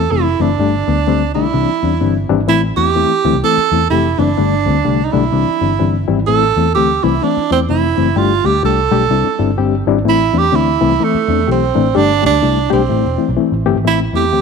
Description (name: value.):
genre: uptempo 1960s-style soul.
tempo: 127 BPM.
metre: 4/4.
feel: swing 60% on 8ths.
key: A minor.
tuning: A4 = 440 Hz.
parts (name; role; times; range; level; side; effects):
warm tenor saxophone; melody; 0.0-14.4 s; A3 to A4; -15 LUFS; right 10 dB; none.
reed electric piano; accompaniment; 0.0-14.4 s; D3 to G4; -16 LUFS; left 10 dB; medium tremolo.
vintage muted picked electric bass; bass; 0.0-14.4 s; E1 to E2; -18 LUFS; equal; none.
room: moderate echo chamber reverb, RT60 2.3 s.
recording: 1960s-style stereo with parts hard left and right.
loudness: -12 LUFS.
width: side -5 dB against mid.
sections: 0.0-13.9 A section.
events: none.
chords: 0.0 Am; 0.6 Gsus2; 1.5 Cadd9; 2.5 Am; 4.4 Gsus2; 5.3 Cadd9; 6.3 Am; 8.2 Gsus2; 9.1 Cadd9; 10.1 Am; 12.0 Gsus2; 12.9 Am.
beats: 0.10 | 0.58 1.05 1.53 2.00 | 2.48 2.95 3.43 3.90 | 4.38 4.85 5.33 5.80 | 6.27 6.75 7.22 7.70 | 8.17 8.64 9.12 9.59 | 10.06 10.54 11.01 11.48 | 11.96 12.43 12.90 13.38 | 13.85 14.32.